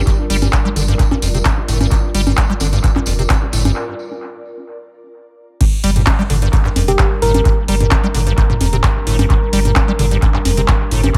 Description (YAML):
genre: acid house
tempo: 130 BPM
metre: 4/4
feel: straight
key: G minor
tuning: A4 = 440 Hz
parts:
  - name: dark analog pad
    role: sustained chords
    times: 0.0-11.2 s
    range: G3 to Bb4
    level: -28 LUFS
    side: equal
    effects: chorus, vintage 12-bit sampler grit, sidechain pumping
  - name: round analog bass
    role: bass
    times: 0.0-11.1 s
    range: F1 to G1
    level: -19 LUFS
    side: equal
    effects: tube saturation, sidechain pumping
  - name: ethereal airy pad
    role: texture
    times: 0.0-3.8 s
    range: F4 to D5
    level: -32 LUFS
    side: equal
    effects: ensemble chorus, built-in reverb, sidechain pumping
  - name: liquid acid bass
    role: riff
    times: 0.1-11.2 s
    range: F2 to G3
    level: -22 LUFS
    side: equal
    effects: chorus, tube saturation, analog delay
  - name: electro analog drum machine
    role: drums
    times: 0.1-11.2 s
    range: congas, crash cymbal, handclaps, hi-hat, toms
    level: -23 LUFS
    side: equal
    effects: analog delay
  - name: electronic kick drum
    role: drums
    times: 0.1-11.2 s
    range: none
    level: -18 LUFS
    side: equal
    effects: none
  - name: tambourine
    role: percussion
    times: 0.1-3.7 s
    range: none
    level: -31 LUFS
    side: equal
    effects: analog delay
  - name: soft struck synth lead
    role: melody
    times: 6.9-7.6 s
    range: G4 to Bb4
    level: -24 LUFS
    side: equal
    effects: chorus, cassette tape, analog delay
room: light reverb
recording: echo-heavy mix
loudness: -15 LUFS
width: mono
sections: 0.0-5.6 A section; 5.6-11.2 B section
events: break 3.8-5.6; drop 5.6-11.2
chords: 0.0 Gm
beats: | 0.07 0.53 0.99 1.45 | 1.91 2.38 2.84 3.30 | 3.76 4.22 4.68 5.14 | 5.61 6.07 6.53 6.99 | 7.45 7.91 8.38 8.84 | 9.30 9.76 10.22 10.68 | 11.14